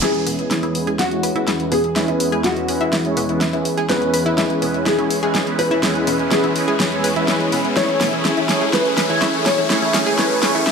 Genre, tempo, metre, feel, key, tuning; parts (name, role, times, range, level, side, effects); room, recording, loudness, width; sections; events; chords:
progressive house; 124 BPM; 4/4; straight; E major; A4 = 439 Hz
dark grand piano; melody; 0.0-10.6 s; F#4 to C#5; -23 LUFS; left 1 dB; analog chorus, ping-pong delay
filtered supersaw swell; sustained chords; 0.0-10.7 s; E2 to A3; -24 LUFS; equal; low-pass filter
analog pluck; arpeggios; 0.0-10.7 s; B3 to B4; -24 LUFS; left 1 dB; chorus, ping-pong delay
soft supersaw; stabs; 0.0-10.6 s; G#3 to E5; -22 LUFS; right 1 dB; ensemble chorus, low-pass filter, ping-pong delay
deep house drum kit; drums; 0.0-10.7 s; hi-hat, snare drum; -22 LUFS; equal; studio reverb
riser; sound effects; 0.0-10.7 s; -27 LUFS; left 3 dB
wet plate reverb, RT60 1.3 s, digital ambience; dreamy mix soaked in reverb, high-pass filter; -16 LUFS; side -6 dB against mid
0.0-10.7 A section
build-up 0.0-10.7; drum fill 0.0-10.7; riser 0.0-10.7; filter sweep on supersaw synth 0.0-10.7
0.0 E6; 7.8 Amaj7